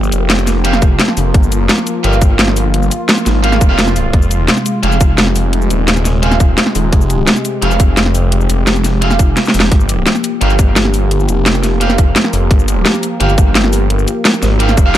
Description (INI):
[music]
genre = dark technical drum and bass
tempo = 172 BPM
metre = 4/4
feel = straight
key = G phrygian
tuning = A4 = 440 Hz
[part]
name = sweeping resonant pad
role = sustained chords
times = 0.0-15.0 s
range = C3 to G4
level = -19 LUFS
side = equal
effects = wide subtle chorus, sidechain pumping
[part]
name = phased detuned saw bass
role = bass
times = 0.0-15.0 s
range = Eb1 to Ab1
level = -14 LUFS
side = equal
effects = phaser, overdrive, sidechain pumping
[part]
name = drum and bass drum kit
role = drums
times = 0.0-15.0 s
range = cabasa, hi-hat, snare drum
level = -14 LUFS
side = equal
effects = overdrive
[part]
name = tight distorted guitar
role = stabs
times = 0.6-14.9 s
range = Bb3 to F5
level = -21 LUFS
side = right 4 dB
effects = distortion, dub echo
[part]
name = electronic kick drum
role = drums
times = 0.8-14.8 s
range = none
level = -10 LUFS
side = equal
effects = overdrive
[sound]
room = light reverb, digital ambience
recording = dark, warm production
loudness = -10 LUFS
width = side -12 dB against mid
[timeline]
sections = 0.0-15.0 A section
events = drum fill 9.4-9.7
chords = 0.0 Gm7; 4.1 Fm; 9.7 Gm7